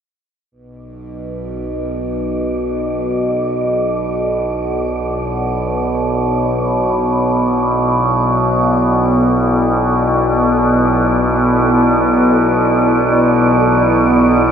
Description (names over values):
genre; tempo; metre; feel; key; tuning
dark ambient drone; free time; none; none; B minor; A4 = 440 Hz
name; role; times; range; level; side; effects
deep dark ambient pad; sustained chords; 4.3-14.5 s; B3 to A4; -17 LUFS; equal; chorus, built-in reverb, shimmer reverb
overtone-sweeping drone; drone; 1.0-14.5 s; B1 to B2; -14 LUFS; equal; chorus, built-in reverb
wind-like tuned noise texture; texture; 1.6-14.5 s; D5; -25 LUFS; right 4 dB; built-in reverb, shimmer reverb
room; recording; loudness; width
wet echo chamber reverb, RT60 2.1 s; none; -13 LUFS; side -8 dB against mid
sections
0.5-14.5 A section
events
fade-in on ambient pad 0.5-14.5; fade-in on synth texture 0.5-14.5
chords
0.5 Bm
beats
free time